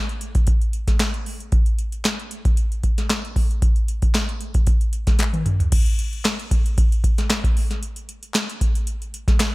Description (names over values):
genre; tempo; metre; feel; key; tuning
pop; 114 BPM; 4/4; swing 54% on 16ths; none; none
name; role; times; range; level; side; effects
booming analog drum machine; drums; 0.1-9.5 s; crash cymbal, hi-hat, kick drum, snare drum, toms; -18 LUFS; equal; overdrive
group handclap; percussion; 1.0-9.5 s; none; -32 LUFS; left 3 dB; none
room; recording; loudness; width
digital ambience; none; -18 LUFS; side -22 dB against mid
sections
0.0-5.7 A section; 5.7-9.5 B section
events
drum fill 5.2-5.7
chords
none